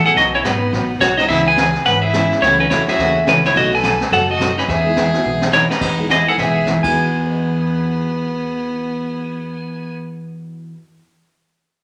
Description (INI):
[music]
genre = country, western swing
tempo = 212 BPM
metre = 4/4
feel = swing 62% on 8ths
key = E major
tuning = A4 = 440 Hz
[part]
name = clean lap steel guitar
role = melody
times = 0.0-10.0 s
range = D#4 to G#5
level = -18 LUFS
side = equal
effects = none
[part]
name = clear fiddle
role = second line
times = 0.0-10.0 s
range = B3 to B4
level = -25 LUFS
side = equal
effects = none
[part]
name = dark upright piano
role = accompaniment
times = 0.0-11.0 s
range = E2 to B6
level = -30 LUFS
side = equal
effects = none
[part]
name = upright bass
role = bass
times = 0.0-10.7 s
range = F#1 to E2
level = -29 LUFS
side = equal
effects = none
[part]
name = picked steel-string acoustic guitar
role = accompaniment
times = 0.2-10.7 s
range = B2 to G#4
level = -25 LUFS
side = equal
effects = none
[part]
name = vintage brush drum kit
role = drums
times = 0.2-6.9 s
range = brushed snare drum, crash cymbal, hi-hat, kick drum, snare drum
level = -26 LUFS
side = equal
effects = none
[sound]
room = wet large studio reverb, RT60 1.2 s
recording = none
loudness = -16 LUFS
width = mono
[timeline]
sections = 0.0-5.8 A section; 5.8-6.9 B section; 6.9-9.2 C section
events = drum fill 5.2-5.8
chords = 0.2 B; 1.3 C#m7; 2.4 F#m7/C#; 3.5 B7; 4.7 Emaj7